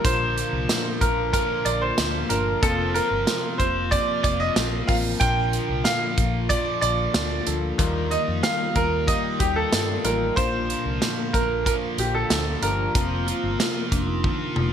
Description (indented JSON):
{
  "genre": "1980s-style pop",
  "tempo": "93 BPM",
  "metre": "4/4",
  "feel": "straight",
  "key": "Bb major",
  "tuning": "A4 = 440 Hz",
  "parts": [
    { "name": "warm baby grand piano", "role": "melody", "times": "0.0-14.7 s", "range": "G4 to G5", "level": "-25 LUFS", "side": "right 2 dB", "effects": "lush chorus" },
    { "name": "bell-like tine electric piano", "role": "accompaniment", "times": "0.0-14.7 s", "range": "Bb2 to Bb4", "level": "-31 LUFS", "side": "left 6 dB", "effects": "fast stereo tremolo" },
    { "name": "overdriven electric guitar", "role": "accompaniment", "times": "0.0-14.7 s", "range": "Bb2 to F4", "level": "-33 LUFS", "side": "right 1 dB", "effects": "lush chorus" },
    { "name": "sweeping resonant pad", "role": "sustained chords", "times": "0.0-14.7 s", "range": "C3 to F4", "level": "-32 LUFS", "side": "equal", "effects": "chorus" },
    { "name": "vintage muted fingered electric bass", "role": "bass", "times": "0.0-14.7 s", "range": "F1 to G2", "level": "-28 LUFS", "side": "equal", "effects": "none" },
    { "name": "modern studio drum kit", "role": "drums", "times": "0.0-14.7 s", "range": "hi-hat, kick drum, snare drum, tambourine, toms", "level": "-25 LUFS", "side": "equal", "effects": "gated reverb" },
    { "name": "marimba with medium mallets", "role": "second line", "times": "13.3-14.7 s", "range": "D4 to F4", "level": "-32 LUFS", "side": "right 2 dB", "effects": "digital delay" }
  ],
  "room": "moderate plate reverb, RT60 1.9 s, small room ambience",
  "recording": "bright 1980s-style digital production",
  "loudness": "-20 LUFS",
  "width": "side -8 dB against mid",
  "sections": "0.0-14.7 A section",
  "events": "drum fill 14.2-14.7",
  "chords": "0.0 Bb; 2.6 Fsus4; 5.2 Bb; 7.8 Ebadd9; 10.4 Bb; 13.0 Fsus4"
}